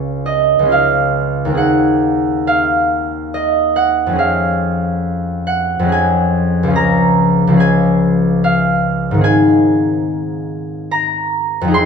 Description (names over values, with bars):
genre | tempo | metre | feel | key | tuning
classical, solo harp piece | 71 BPM | 3/4 | uneven beats, rubato | Db major | A4 = 440 Hz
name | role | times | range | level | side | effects
concert harp | solo | 0.0-11.9 s | Db2 to C6 | -12 LUFS | equal | none
room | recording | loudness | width
moderate recital hall reverb, RT60 1.4 s | close, detailed microphones | -12 LUFS | side -6 dB against mid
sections
0.0-11.9 A section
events
none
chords
0.0 Db; 1.6 Ab7/Eb; 4.2 Db/F; 6.8 Db; 9.2 Ab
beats
0.71 | 1.58 2.48 3.35 | 4.20 5.05 5.91 | 6.76 7.60 8.43 | 9.24 10.08 10.91 | 11.74